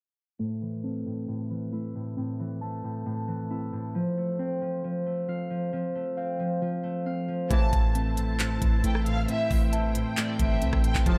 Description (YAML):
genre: hip hop, trap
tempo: 135 BPM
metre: 4/4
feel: half-time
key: A minor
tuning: A4 = 441 Hz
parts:
  - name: concert harp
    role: accompaniment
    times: 0.4-11.2 s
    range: A2 to F5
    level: -35 LUFS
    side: equal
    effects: low-pass filter
  - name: muted felt-like synth keys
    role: arpeggios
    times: 0.4-11.2 s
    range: F3 to A5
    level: -34 LUFS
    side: equal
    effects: chorus, low-pass filter, analog delay
  - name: warm studio violin section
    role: second line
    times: 7.5-11.2 s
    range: D5 to A5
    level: -36 LUFS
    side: equal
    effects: analog delay
  - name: muted symphonic string section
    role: sustained chords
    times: 7.5-11.2 s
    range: E4 to A5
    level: -40 LUFS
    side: equal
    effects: none
  - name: warm brass ensemble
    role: stabs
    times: 7.5-7.8, 11.1-11.2 s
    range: A2 to F3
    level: -38 LUFS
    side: equal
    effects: none
  - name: warm 808-style bass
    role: bass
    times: 7.5-11.2 s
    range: F1 to C2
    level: -30 LUFS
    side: equal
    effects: none
  - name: trap drum kit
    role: drums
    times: 7.5-11.2 s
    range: handclaps, hi-hat, kick drum, rim click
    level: -28 LUFS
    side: equal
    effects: none
room: moderate plate reverb, RT60 1.7 s, small room ambience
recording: dreamy mix soaked in reverb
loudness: -28 LUFS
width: mono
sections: 0.4-7.5 A section; 7.5-11.2 B section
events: filter sweep 0.4-7.5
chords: 0.4 Am; 4.0 F; 7.5 Am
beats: | 0.39 0.84 1.28 1.73 | 2.17 2.62 3.06 3.50 | 3.95 4.39 4.84 5.28 | 5.73 6.17 6.62 7.06 | 7.50 7.95 8.39 8.84 | 9.28 9.73 10.17 10.62 | 11.06